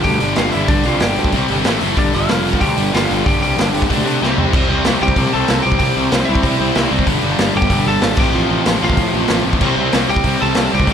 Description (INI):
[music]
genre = punk rock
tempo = 188 BPM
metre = 4/4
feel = straight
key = C major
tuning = A4 = 442 Hz
[part]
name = lightly driven lead guitar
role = melody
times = 0.0-10.9 s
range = D4 to A5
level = -21 LUFS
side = equal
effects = none
[part]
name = biting overdriven guitar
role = riff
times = 0.0-10.9 s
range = F2 to D4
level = -22 LUFS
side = equal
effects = none
[part]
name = distorted electric guitar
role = riff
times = 0.0-10.9 s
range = F2 to D4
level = -21 LUFS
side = left 16 dB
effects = overdrive
[part]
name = distorted electric guitar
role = riff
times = 0.0-10.9 s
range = F2 to D4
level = -22 LUFS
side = right 14 dB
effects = overdrive
[part]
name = raw garage drum kit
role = drums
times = 0.0-10.9 s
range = crash cymbal, hi-hat, kick drum, snare drum, toms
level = -18 LUFS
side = equal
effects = none
[part]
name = fuzz picked electric bass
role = bass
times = 0.1-10.9 s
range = F1 to C3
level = -21 LUFS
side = equal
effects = overdrive
[sound]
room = little or no reverb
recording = none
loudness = -13 LUFS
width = side -8 dB against mid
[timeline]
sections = 0.0-4.5 A section; 4.5-10.9 B section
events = drum fill 4.2-4.5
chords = 0.0 G5; 1.3 C5; 1.7 A5; 2.0 G5; 3.9 D5; 4.2 C5; 7.1 G5; 8.2 F/A; 9.6 C5